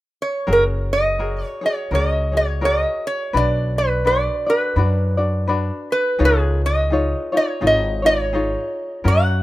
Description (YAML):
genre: Hawaiian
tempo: 84 BPM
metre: 4/4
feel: swing 58% on 8ths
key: F# major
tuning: A4 = 443 Hz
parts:
  - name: metal-body resonator slide guitar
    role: melody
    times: 0.2-9.4 s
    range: G#4 to F#5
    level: -20 LUFS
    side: right 1 dB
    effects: none
  - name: tenor ukulele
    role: accompaniment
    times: 0.5-9.4 s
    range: C#4 to D5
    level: -24 LUFS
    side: left 3 dB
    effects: none
  - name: upright bass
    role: bass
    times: 0.5-9.4 s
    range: F#1 to F#2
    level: -20 LUFS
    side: equal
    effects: none
room: studio reverb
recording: rough home demo mix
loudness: -17 LUFS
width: side -16 dB against mid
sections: 0.5-9.4 A section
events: none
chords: 0.5 F#add9; 3.3 Bm; 6.2 C#add9